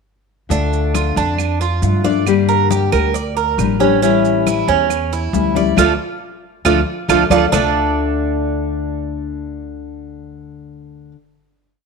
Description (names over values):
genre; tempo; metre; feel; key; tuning
latin, Cuban son and guajira; 137 BPM; 4/4; straight; D harmonic minor; A4 = 440 Hz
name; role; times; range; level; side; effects
nylon-string guitar; accompaniment; 0.5-11.2 s; D3 to G4; -19 LUFS; left 12 dB; none
Cuban tres; arpeggios; 0.5-11.1 s; C#4 to D5; -18 LUFS; right 10 dB; none
upright bass; bass; 0.5-11.1 s; A1 to G2; -21 LUFS; equal; none
congas; percussion; 0.5-7.6 s; none; -25 LUFS; left 9 dB; none
maracas; percussion; 0.5-7.6 s; none; -32 LUFS; right 14 dB; none
claves; percussion; 0.9-7.6 s; none; -27 LUFS; right 10 dB; none
room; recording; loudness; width
moderate echo chamber reverb, RT60 1.6 s, studio ambience; 1960s-style stereo with parts hard left and right; -14 LUFS; side -4 dB against mid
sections
0.5-7.5 A section; 7.5-11.0 final chord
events
band accent 5.8-7.5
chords
0.5 Dm; 2.3 Gm; 4.0 A7; 5.8 Dm